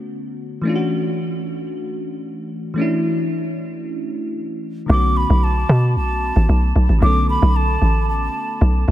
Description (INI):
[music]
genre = amapiano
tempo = 113 BPM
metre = 4/4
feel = straight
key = unclear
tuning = A4 = 440 Hz
[part]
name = bell-like FM electric piano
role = accompaniment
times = 0.0-8.9 s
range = D3 to A4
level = -23 LUFS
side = left 1 dB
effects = chorus
[part]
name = mellow hollow silver concert flute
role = melody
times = 4.9-8.8 s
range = A5 to D6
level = -22 LUFS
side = right 1 dB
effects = diffuse ambient delay
[part]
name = hollow log drum bass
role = bass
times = 4.9-8.9 s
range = A1 to B2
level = -15 LUFS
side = equal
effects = none
[sound]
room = light reverb, small room reverb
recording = none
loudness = -16 LUFS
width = side -13 dB against mid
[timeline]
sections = 0.0-4.9 A section; 4.9-8.9 B section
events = drop 4.9-8.9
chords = 0.0 Bm7; 0.6 Dmaj7; 4.9 Bm7